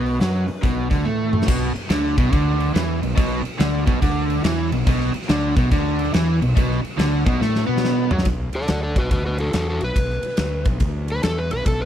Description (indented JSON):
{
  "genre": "blues rock power trio and southern rock",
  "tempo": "142 BPM",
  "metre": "4/4",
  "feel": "swing 65% on 8ths",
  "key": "unclear",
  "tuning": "A4 = 440 Hz",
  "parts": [
    { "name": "overdriven slide guitar", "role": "melody", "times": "0.0-1.0, 8.6-11.9 s", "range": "F#4 to D5", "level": "-26 LUFS", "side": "equal", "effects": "none" },
    { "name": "overdriven electric guitar", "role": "riff", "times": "0.0-8.3 s", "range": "B2 to B3", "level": "-21 LUFS", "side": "right 1 dB", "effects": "none" },
    { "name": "fuzz fingered electric bass", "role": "bass", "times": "0.0-11.9 s", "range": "B1 to B2", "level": "-24 LUFS", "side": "equal", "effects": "overdrive" },
    { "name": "huge arena drum kit", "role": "drums", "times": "0.1-11.8 s", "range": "crash cymbal, hi-hat, kick drum, ride cymbal, snare drum, toms", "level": "-22 LUFS", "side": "equal", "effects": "none" }
  ],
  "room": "little or no reverb",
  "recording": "none",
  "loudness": "-18 LUFS",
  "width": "side -10 dB against mid",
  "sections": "0.0-1.5 A section; 1.5-8.3 B section; 8.3-11.9 C section",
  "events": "drum fill 1.1-1.5, 7.4-8.3; electric slide guitar solo 8.3-11.9",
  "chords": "0.0 B5"
}